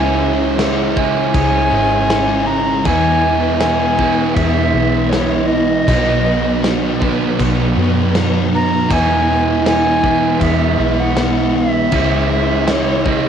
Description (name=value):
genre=rock, shoegaze and dream pop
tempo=79 BPM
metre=4/4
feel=straight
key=E major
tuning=A4 = 439 Hz
part: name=silver concert flute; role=melody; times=0.0-13.3 s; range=C#5 to A#5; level=-19 LUFS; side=equal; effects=analog delay
part: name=electric guitar through a small old amp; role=arpeggios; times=0.0-13.3 s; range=E3 to G#4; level=-25 LUFS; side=left 9 dB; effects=ensemble chorus, analog delay
part: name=overdriven electric guitar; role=riff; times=0.0-13.3 s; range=B2 to E4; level=-18 LUFS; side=right 10 dB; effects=reverse reverb
part: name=thick fuzz guitar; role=riff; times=0.0-13.3 s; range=E2 to C#4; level=-20 LUFS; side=left 10 dB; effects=distortion, analog chorus
part: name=vintage muted picked electric bass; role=bass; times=0.0-13.3 s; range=G#1 to F#2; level=-21 LUFS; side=equal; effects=none
part: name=loose indie drum kit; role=drums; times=0.6-13.2 s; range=crash cymbal, kick drum, snare drum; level=-23 LUFS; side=left 1 dB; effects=none
room=moderate studio ambience, RT60 0.5 s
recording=home recording on cassette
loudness=-13 LUFS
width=side -8 dB against mid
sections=0.0-13.3 A section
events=none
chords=0.0 C#m; 2.9 E; 5.9 B; 8.9 E; 11.9 C#m